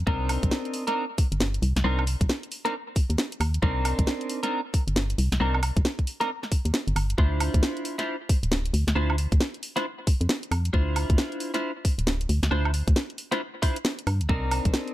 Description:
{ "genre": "UK garage, two-step garage", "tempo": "135 BPM", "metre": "4/4", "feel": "swing 62% on 16ths", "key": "D phrygian", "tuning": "A4 = 436 Hz", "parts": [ { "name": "organ-like FM bass", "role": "bass", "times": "0.0-14.7 s", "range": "D1 to G2", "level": "-25 LUFS", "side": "equal", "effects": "none" }, { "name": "clean electric guitar", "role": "stabs", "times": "0.1-14.9 s", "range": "C4 to C5", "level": "-29 LUFS", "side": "equal", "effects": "analog chorus, tape echo" }, { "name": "electronic kick drum", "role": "drums", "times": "0.1-14.7 s", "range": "none", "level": "-23 LUFS", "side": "equal", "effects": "none" }, { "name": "garage drum kit", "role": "drums", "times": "0.3-14.9 s", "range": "hi-hat, snare drum, woodblock", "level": "-29 LUFS", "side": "right 1 dB", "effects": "none" } ], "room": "little or no reverb", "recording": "none", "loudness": "-23 LUFS", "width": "side -15 dB against mid", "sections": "0.0-14.9 A section", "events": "none", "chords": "0.1 Cm9; 7.2 Dm9; 14.3 Cm9", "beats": "| 0.07 0.52 0.96 1.41 | 1.85 2.29 2.74 3.18 | 3.63 4.07 4.52 4.96 | 5.41 5.85 6.29 6.74 | 7.18 7.63 8.07 8.52 | 8.96 9.40 9.85 10.29 | 10.74 11.18 11.63 12.07 | 12.52 12.96 13.40 13.85 | 14.29 14.74" }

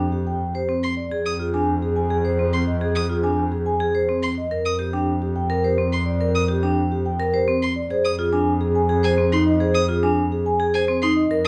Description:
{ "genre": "classical, minimalist pattern music", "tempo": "106 BPM", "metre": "3/4", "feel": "straight", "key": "F dorian", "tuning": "A4 = 440 Hz", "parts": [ { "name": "vibraphone with soft mallets", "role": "melody", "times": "0.0-11.5 s", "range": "G4 to Ab5", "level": "-27 LUFS", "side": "equal", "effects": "none" }, { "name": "vibraphone with hard mallets", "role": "arpeggios", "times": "0.0-11.5 s", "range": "C4 to C5", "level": "-25 LUFS", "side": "equal", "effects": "none" }, { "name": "clear double bass", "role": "bass", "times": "0.0-11.5 s", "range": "F2", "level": "-26 LUFS", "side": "equal", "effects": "none" }, { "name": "rich violin", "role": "arpeggios", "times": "0.8-11.5 s", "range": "Ab5 to Eb6", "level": "-30 LUFS", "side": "equal", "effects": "none" } ], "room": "moderate large studio reverb, RT60 0.8 s", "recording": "heard from further back in the room, nothing above 10.5 kHz", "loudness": "-21 LUFS", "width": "mono", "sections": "0.0-11.5 A section", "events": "none", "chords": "0.0 N.C.; 1.1 Fm; 4.5 Eb/F (rootless); 7.9 Fm7", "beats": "0.55 | 1.11 1.68 2.25 | 2.81 3.38 3.94 | 4.51 5.08 5.64 | 6.21 6.77 7.34 | 7.91 8.47 9.04 | 9.60 10.17 10.74 | 11.30" }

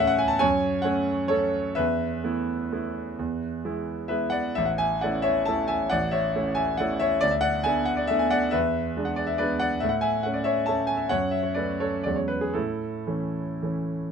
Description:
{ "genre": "classical, piano waltz", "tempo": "109-149 BPM", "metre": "3/4", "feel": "rubato", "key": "A major", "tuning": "A4 = 440 Hz", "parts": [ { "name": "bright grand piano", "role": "solo", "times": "0.0-14.1 s", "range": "A1 to B5", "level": "-23 LUFS", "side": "equal", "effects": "none" } ], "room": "light reverb", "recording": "close, detailed microphones", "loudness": "-23 LUFS", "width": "side -6 dB against mid", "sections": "0.0-14.1 A section", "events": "none", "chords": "0.4 F#m; 1.8 Esus4; 3.2 E; 4.6 A; 7.2 D5; 8.5 E7; 9.8 A; 11.1 F#m; 12.1 E69; 12.6 A", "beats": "0.00 | 0.42 0.84 1.30 | 1.76 2.22 2.70 | 3.17 3.63 4.10 | 4.57 5.02 5.48 | 5.92 6.35 6.80 | 7.23 7.66 8.11 | 8.54 8.96 9.39 | 9.83 10.25 10.69 | 11.12 11.57 12.05 | 12.55 13.07 13.62" }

